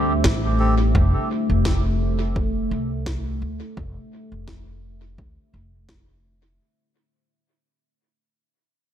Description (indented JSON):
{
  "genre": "ambient dub",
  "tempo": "85 BPM",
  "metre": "4/4",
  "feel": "swing 55% on 16ths",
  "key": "unclear",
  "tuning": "A4 = 439 Hz",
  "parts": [
    { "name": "deep dark ambient pad", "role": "sustained chords", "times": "0.0-6.6 s", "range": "A3 to E5", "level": "-26 LUFS", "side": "equal", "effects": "chorus, built-in reverb" },
    { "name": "upright bass", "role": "bass", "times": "0.0-6.6 s", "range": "F1 to D2", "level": "-22 LUFS", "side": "equal", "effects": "none" },
    { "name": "electronic kick drum", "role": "drums", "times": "0.2-6.0 s", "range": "none", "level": "-25 LUFS", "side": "equal", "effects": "none" },
    { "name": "electronic snare drum", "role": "drums", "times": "0.2-6.0 s", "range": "none", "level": "-30 LUFS", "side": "equal", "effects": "dub echo" },
    { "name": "melodica", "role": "stabs", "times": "0.6-0.8 s", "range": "C4 to A4", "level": "-28 LUFS", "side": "right 1 dB", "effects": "dub echo" }
  ],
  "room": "light reverb",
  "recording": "none",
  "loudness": "-19 LUFS",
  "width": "side -10 dB against mid",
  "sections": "0.0-6.6 A section",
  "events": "fade-out 0.0-6.6",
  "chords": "0.0 Am7; 0.9 F69"
}